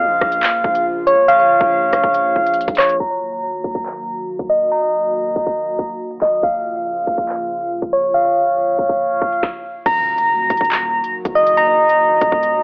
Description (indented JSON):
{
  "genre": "hip hop, drill",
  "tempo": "140 BPM",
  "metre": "4/4",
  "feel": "half-time",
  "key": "Eb minor",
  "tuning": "A4 = 436 Hz",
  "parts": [
    { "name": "hollow soft pad", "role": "sustained chords", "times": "0.0-12.6 s", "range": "Db3 to Gb4", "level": "-28 LUFS", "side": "equal", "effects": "chorus, cassette tape" },
    { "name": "soft electric-piano-like synth keys", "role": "arpeggios", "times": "0.0-12.6 s", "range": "Db5 to Bb5", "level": "-14 LUFS", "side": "equal", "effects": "chorus, cassette tape, tape echo" },
    { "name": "distorted 808-style bass", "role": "bass", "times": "0.0-3.0, 9.9-12.6 s", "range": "Db1 to Bb1", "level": "-29 LUFS", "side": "equal", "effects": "distortion" },
    { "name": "drill drum kit", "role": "drums", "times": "0.2-12.5 s", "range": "crash cymbal, handclaps, hi-hat, kick drum, rim click, snare drum", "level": "-22 LUFS", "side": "equal", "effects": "none" },
    { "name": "impact", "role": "sound effects", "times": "9.9-11.6 s", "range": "none", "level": "-43 LUFS", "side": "equal", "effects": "none" }
  ],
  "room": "moderate spring reverb, RT60 2.1 s",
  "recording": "home recording on cassette, low-pass filter, telephone sound",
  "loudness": "-14 LUFS",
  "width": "side -32 dB against mid",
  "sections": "0.0-3.0 A section; 3.0-9.9 B section; 9.9-12.6 C section",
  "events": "filter sweep 3.0-9.9; stop 9.4-9.9; impact 9.9-11.6",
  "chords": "0.0 Bbm; 3.0 Ebm; 6.4 Bbm; 9.9 Ebm"
}